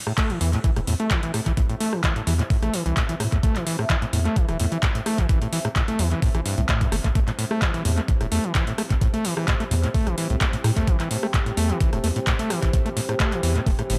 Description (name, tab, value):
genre	acid house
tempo	129 BPM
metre	4/4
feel	straight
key	A minor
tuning	A4 = 441 Hz
part	deep dark ambient pad	texture	0.5-14.0 s	G4 to G5	-37 LUFS	equal	chorus, built-in reverb, sidechain pumping
part	overdriven acid bass	riff	0.1-14.0 s	G2 to A3	-28 LUFS	equal	distortion, sidechain pumping, dub echo
part	electro analog drum machine	drums	0.1-14.0 s	handclaps, hi-hat, rim click	-31 LUFS	equal	dub echo
part	electronic kick drum	drums	0.2-13.8 s	none	-24 LUFS	equal	none
part	saturated sub bass	bass	0.4-14.0 s	E1 to A2	-26 LUFS	equal	sidechain pumping
room	digital ambience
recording	echo-heavy mix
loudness	-23 LUFS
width	mono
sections	0.0-14.0 A section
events	none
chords	0.0 Am